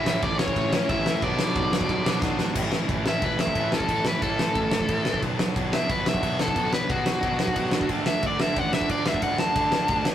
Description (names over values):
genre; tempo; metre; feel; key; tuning
punk rock; 180 BPM; 4/4; straight; unclear; A4 = 440 Hz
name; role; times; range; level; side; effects
overdriven electric guitar; melody; 0.0-10.0 s; F#4 to A5; -26 LUFS; left 1 dB; none
distorted electric guitar; riff; 0.0-10.1 s; A2 to D4; -32 LUFS; right 5 dB; distortion
tight distorted guitar; riff; 0.0-10.1 s; A2 to F#4; -32 LUFS; left 5 dB; distortion
tight distorted guitar; riff; 0.0-2.6 s; A2 to E4; -31 LUFS; right 1 dB; distortion
fuzz picked electric bass; bass; 0.1-10.1 s; E1 to D3; -31 LUFS; equal; overdrive
loose indie drum kit; drums; 0.1-10.1 s; crash cymbal, kick drum, ride cymbal, snare drum; -26 LUFS; equal; none
room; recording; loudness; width
light reverb; rough rehearsal-room recording, tube saturation; -22 LUFS; side -10 dB against mid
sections
0.0-2.6 A section; 2.6-10.1 B section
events
drum fill 2.2-2.6; overdriven electric guitar solo 2.6-10.1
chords
0.0 A; 1.2 Bm; 2.6 A; 5.2 Bm; 7.7 D